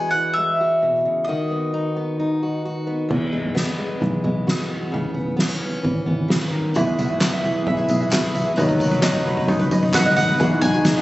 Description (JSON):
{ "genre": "indie folk with a building arrangement", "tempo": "132 BPM", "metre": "4/4", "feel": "straight", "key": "E major", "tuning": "A4 = 440 Hz", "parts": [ { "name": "mandolin", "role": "melody", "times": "0.0-2.8, 9.9-11.0 s", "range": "D#5 to G#5", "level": "-20 LUFS", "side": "equal", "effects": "digital delay" }, { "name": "fingerpicked plugged-in steel-string acoustic guitar", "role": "accompaniment", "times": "0.0-6.8 s", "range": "E2 to F#4", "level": "-24 LUFS", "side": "left 1 dB", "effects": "none" }, { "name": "picked electric bass", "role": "bass", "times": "3.1-11.0 s", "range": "G#1 to F#2", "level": "-25 LUFS", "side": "equal", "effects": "none" }, { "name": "soft-mallet drum kit", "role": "drums", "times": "3.1-11.0 s", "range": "crash cymbal, kick drum, snare drum, toms", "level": "-23 LUFS", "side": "equal", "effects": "none" }, { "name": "picked twelve-string acoustic guitar", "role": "accompaniment", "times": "6.7-11.0 s", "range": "D#3 to B4", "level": "-26 LUFS", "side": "left 2 dB", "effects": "none" }, { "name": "warm French horn", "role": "second line", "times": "6.8-11.0 s", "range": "E3 to D#4", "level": "-25 LUFS", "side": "left 1 dB", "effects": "digital delay" }, { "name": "bright upright piano", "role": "accompaniment", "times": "6.8-11.0 s", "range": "D#2 to F#5", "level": "-28 LUFS", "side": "left 2 dB", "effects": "none" }, { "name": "tenor ukulele", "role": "arpeggios", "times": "6.8-11.0 s", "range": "D#4 to F#5", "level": "-24 LUFS", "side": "right 1 dB", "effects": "none" }, { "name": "tambourine", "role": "percussion", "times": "6.8-11.0 s", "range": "none", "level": "-38 LUFS", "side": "right 2 dB", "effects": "none" }, { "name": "group handclap", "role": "percussion", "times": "7.2-10.0 s", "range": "none", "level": "-26 LUFS", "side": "left 1 dB", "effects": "none" } ], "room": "light reverb", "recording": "recorded on a phone in the room, club reverb, nothing above 8.0 kHz", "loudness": "-18 LUFS", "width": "side -17 dB against mid", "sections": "0.0-3.1 A section; 3.1-10.4 B section", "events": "build-up 3.1-10.4; drum fill 3.1-10.4", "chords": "0.0 Eadd9; 1.3 B/D#; 3.1 Eadd9; 4.9 C#m7; 6.8 Eadd9; 8.6 B/D#; 10.4 Eadd9" }